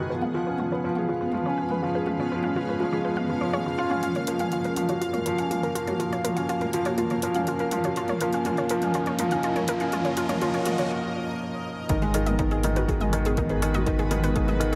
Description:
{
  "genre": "piano and strings electronica",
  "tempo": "122 BPM",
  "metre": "4/4",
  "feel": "straight",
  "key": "F# major",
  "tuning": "A4 = 442 Hz",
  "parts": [
    { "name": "granular cloud pad", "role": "sustained chords", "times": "0.0-14.8 s", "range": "G#3 to E#5", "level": "-36 LUFS", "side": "equal", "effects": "built-in reverb" },
    { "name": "unison pluck", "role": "arpeggios", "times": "0.0-14.8 s", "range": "D#4 to E#5", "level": "-35 LUFS", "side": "equal", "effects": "sidechain pumping, digital delay" },
    { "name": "felt-muted upright piano", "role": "riff", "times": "0.0-14.8 s", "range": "D#3 to B4", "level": "-28 LUFS", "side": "equal", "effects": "digital delay" },
    { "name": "deep house drum kit", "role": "drums", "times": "0.2-14.8 s", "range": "hi-hat, toms", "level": "-37 LUFS", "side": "equal", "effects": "none" },
    { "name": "riser", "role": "sound effects", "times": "8.0-10.9 s", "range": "none", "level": "-41 LUFS", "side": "equal", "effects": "none" },
    { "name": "warm sub bass", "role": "bass", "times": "11.9-14.8 s", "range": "G#1", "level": "-30 LUFS", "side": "equal", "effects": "tube saturation, sidechain pumping" },
    { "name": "electronic kick drum", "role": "drums", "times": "11.9-14.5 s", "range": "none", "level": "-30 LUFS", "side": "equal", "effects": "none" }
  ],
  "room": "moderate huge ambient reverb, RT60 6.3 s",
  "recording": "none",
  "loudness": "-26 LUFS",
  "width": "mono",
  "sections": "0.0-11.9 A section; 11.9-14.8 B section",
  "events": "build-up 0.0-11.9; filter sweep on synth arpeggio sound 0.0-11.9; riser 8.0-10.9; break 10.9-11.9; drop 11.9-14.8",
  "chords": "0.1 C#7; 4.0 F#maj7; 8.0 F7sus4; 11.9 G#m7"
}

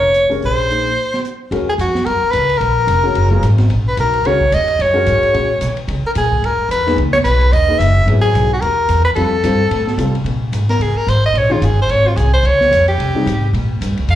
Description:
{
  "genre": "modal jazz",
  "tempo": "220 BPM",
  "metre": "4/4",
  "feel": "swing 58% on 8ths",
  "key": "Eb phrygian, Bb dorian from 10.3 s",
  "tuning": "A4 = 440 Hz",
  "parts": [
    { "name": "bright soprano saxophone", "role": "melody", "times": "0.0-14.2 s", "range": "F4 to F5", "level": "-15 LUFS", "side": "equal", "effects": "slapback echo" },
    { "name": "upright bass", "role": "bass", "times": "0.0-14.2 s", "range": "Fb1 to Db3", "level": "-16 LUFS", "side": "equal", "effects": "none" },
    { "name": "open jazz drum kit", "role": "drums", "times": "0.1-14.2 s", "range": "hi-hat, kick drum, ride cymbal, snare drum", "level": "-27 LUFS", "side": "equal", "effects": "none" },
    { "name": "warm grand piano", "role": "accompaniment", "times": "0.3-13.3 s", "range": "Db3 to Db5", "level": "-21 LUFS", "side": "left 3 dB", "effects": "slapback echo" }
  ],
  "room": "light reverb, studio reverb",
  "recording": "live gig heard through the venue's PA, club reverb",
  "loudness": "-12 LUFS",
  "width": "side -12 dB against mid",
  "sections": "0.0-1.5 A section; 1.5-10.3 B section; 10.3-14.2 C section",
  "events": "break 1.0-1.5; soprano saxophone solo 10.3-14.2",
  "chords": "0.0 Bbm9; 1.5 Ebm9 (rootless); 5.9 Dbm9; 9.2 F; 10.3 Bbm9"
}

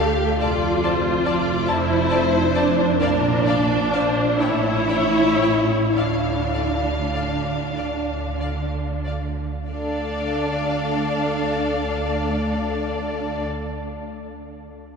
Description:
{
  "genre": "classical, slow romantic movement for string orchestra",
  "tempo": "30-48 BPM (dotted quarters)",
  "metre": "6/8",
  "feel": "rubato",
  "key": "D minor",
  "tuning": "A4 = 440 Hz",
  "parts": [
    { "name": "warm symphonic violin section", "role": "melody", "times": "0.0-13.4 s", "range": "Bb4 to F5", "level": "-28 LUFS", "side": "left 4 dB", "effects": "none" },
    { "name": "warm symphonic violin section", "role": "second line", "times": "0.0-13.4 s", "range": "A4 to A5", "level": "-29 LUFS", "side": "left 2 dB", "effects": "none" },
    { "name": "warm symphonic viola section", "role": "accompaniment", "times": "0.0-13.4 s", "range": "D4 to G4", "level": "-22 LUFS", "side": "equal", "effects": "none" },
    { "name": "rich symphonic cello section", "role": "bass", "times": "0.0-13.4 s", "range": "D2 to D3", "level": "-28 LUFS", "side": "right 2 dB", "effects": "none" },
    { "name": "warm symphonic double bass section", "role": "bass", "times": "0.0-13.4 s", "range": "F1 to D2", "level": "-28 LUFS", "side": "right 3 dB", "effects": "none" }
  ],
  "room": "wet cathedral reverb, RT60 5.2 s",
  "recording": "recorded in a church or concert hall",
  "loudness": "-19 LUFS",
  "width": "side -5 dB against mid",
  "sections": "0.0-9.7 A section; 9.7-13.4 B section",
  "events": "slowing down 1.7-9.7",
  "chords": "0.4 Dm/F; 3.0 Bb; 4.4 A; 6.0 Dm"
}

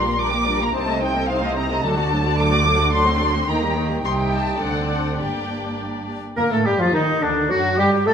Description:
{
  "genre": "quick classical-period movement for symphony orchestra",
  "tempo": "101-111 BPM",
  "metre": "2/4",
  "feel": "rubato",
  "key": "G minor",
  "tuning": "A4 = 444 Hz",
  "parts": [
    { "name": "muted chamber violin section", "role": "melody", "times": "0.0-8.1 s", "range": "D4 to D6", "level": "-24 LUFS", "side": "left 1 dB", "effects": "none" },
    { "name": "muted chamber violin section", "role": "second line", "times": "0.0-8.1 s", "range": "D4 to Bb5", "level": "-26 LUFS", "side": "left 2 dB", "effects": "none" },
    { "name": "muted chamber viola section", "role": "accompaniment", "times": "0.0-8.1 s", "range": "D3 to F#4", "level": "-26 LUFS", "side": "equal", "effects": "none" },
    { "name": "muted chamber double bass section", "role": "bass", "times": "0.0-8.1 s", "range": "G1 to Bb2", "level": "-26 LUFS", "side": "right 2 dB", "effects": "none" },
    { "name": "muted symphonic cello section", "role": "bass", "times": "0.0-8.1 s", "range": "G2 to Bb3", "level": "-27 LUFS", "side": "right 3 dB", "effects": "none" },
    { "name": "clear oboe", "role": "second line", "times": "6.4-8.1 s", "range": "D4 to Bb4", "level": "-22 LUFS", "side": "equal", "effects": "none" },
    { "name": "concert flute", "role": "second line", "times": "6.4-8.1 s", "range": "D4 to Bb4", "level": "-27 LUFS", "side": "left 2 dB", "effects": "none" },
    { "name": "warm clarinet", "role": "second line", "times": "6.4-8.1 s", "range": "D4 to Bb4", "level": "-25 LUFS", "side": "left 2 dB", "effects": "none" },
    { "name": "dark bassoon", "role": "accompaniment", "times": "6.4-8.1 s", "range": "D3 to Bb3", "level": "-25 LUFS", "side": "right 1 dB", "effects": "none" },
    { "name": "mellow French horn section", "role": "sustained chords", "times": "6.4-8.1 s", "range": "D3 to Bb3", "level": "-28 LUFS", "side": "left 3 dB", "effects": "none" },
    { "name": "timpani", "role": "percussion", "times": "6.4-7.2 s", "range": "G2", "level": "-39 LUFS", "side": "left 1 dB", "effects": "none" }
  ],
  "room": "wet recital hall reverb, RT60 1.8 s",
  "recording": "none",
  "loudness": "-18 LUFS",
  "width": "side -7 dB against mid",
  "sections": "0.0-6.4 A section; 6.4-8.1 A section",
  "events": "none",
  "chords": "0.0 Gm/Bb; 0.7 Adim/C; 1.8 D; 2.9 D7; 3.5 Eb; 4.1 Cm; 4.6 D7; 5.2 Gm; 7.5 F#m"
}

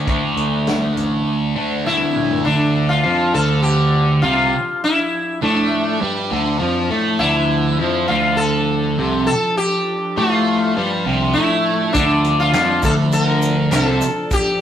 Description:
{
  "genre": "psychedelic rock",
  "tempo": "101 BPM",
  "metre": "4/4",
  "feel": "straight",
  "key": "D minor",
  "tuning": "A4 = 440 Hz",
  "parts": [
    { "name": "sitar", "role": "melody", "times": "0.0-14.6 s", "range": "D4 to Bb4", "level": "-19 LUFS", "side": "left 1 dB", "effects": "none" },
    { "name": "thick fuzz guitar", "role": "riff", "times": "0.0-14.0 s", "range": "C3 to D4", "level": "-18 LUFS", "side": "right 1 dB", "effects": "distortion, phaser" },
    { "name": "overdriven picked electric bass", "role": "bass", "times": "0.1-14.0 s", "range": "A1 to A2", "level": "-22 LUFS", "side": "equal", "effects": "none" },
    { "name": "vintage drum kit", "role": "drums", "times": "0.1-2.4, 11.9-14.4 s", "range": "hi-hat, kick drum, snare drum, toms", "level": "-24 LUFS", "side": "equal", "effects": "none" },
    { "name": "soft string machine", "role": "sustained chords", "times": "4.2-14.6 s", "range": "F3 to A5", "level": "-29 LUFS", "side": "right 1 dB", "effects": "ensemble chorus" },
    { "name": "tube shaker", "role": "percussion", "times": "11.9-14.4 s", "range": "none", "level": "-38 LUFS", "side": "right 7 dB", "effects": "none" }
  ],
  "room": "moderate stone room reverb, RT60 0.9 s",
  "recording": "rough rehearsal-room recording, tube saturation",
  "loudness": "-15 LUFS",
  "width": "side -9 dB against mid",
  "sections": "0.0-2.5 A section; 2.5-14.6 B section",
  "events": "drum fill 1.9-2.5",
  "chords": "0.0 D5; 2.5 Dm"
}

